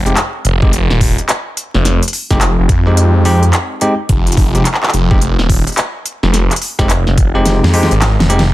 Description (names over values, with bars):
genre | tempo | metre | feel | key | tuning
glitch hop | 107 BPM | 4/4 | swing 62% on 16ths | F minor | A4 = 440 Hz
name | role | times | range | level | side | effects
phased detuned saw bass | bass | 0.0-8.5 s | Eb1 to F2 | -12 LUFS | equal | phaser, tube saturation
bell-like tine electric piano | stabs | 0.1-8.4 s | Ab3 to G4 | -17 LUFS | equal | sidechain pumping, digital delay
pop drum kit | drums | 0.1-8.5 s | handclaps, hi-hat, snare drum | -17 LUFS | equal | soft clipping on snare
electronic kick drum | drums | 0.6-7.3 s | none | -13 LUFS | equal | none
room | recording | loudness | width
little or no reverb | dense, heavily limited modern master, vinyl crackle | -10 LUFS | side -16 dB against mid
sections
0.0-8.5 A section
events
drum fill 7.5-8.5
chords
0.0 Fm9